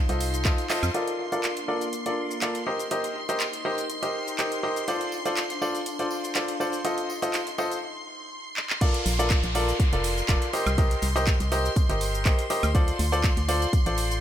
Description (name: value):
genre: piano house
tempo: 122 BPM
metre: 4/4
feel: swing 53% on 16ths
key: Bb major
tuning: A4 = 441 Hz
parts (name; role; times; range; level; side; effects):
- string machine, violins; sustained chords; 0.0-14.2 s; C6 to C7; -34 LUFS; equal; ensemble chorus, sidechain pumping
- warbly tape-like pad; texture; 0.0-7.8 s; Bb3 to Bb5; -38 LUFS; equal; chorus, built-in reverb, sidechain pumping
- clear baby grand piano; riff; 0.1-14.2 s; F4 to Eb5; -28 LUFS; equal; sidechain pumping, low-pass filter, digital delay
- organ-like FM bass; bass; 0.1-0.9, 9.1-14.2 s; F1 to F2; -27 LUFS; equal; sidechain pumping
- house drum kit; drums; 0.1-14.2 s; crash cymbal, handclaps, hi-hat, shaker, woodblock; -32 LUFS; right 1 dB; none
- tambourine; percussion; 0.1-0.9, 4.9-14.2 s; none; -43 LUFS; equal; none
- electronic kick drum; drums; 0.5-0.6, 8.8-13.8 s; none; -23 LUFS; equal; none
- downlifter; sound effects; 8.8-12.7 s; none; -35 LUFS; equal; none
room: light reverb, digital ambience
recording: none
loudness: -23 LUFS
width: side -10 dB against mid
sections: 0.9-8.8 A section; 8.8-14.2 B section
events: drum fill 0.7, 8.6; band accent 0.7; filter sweep on grand piano 0.9-8.8; break 7.8-8.8; drop 8.8-14.2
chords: 0.0 F7; 0.9 Bbmaj7; 2.7 Cm7; 4.9 Dm7; 6.8 F7; 8.8 Bbmaj7; 10.5 Cm7; 12.7 Dm7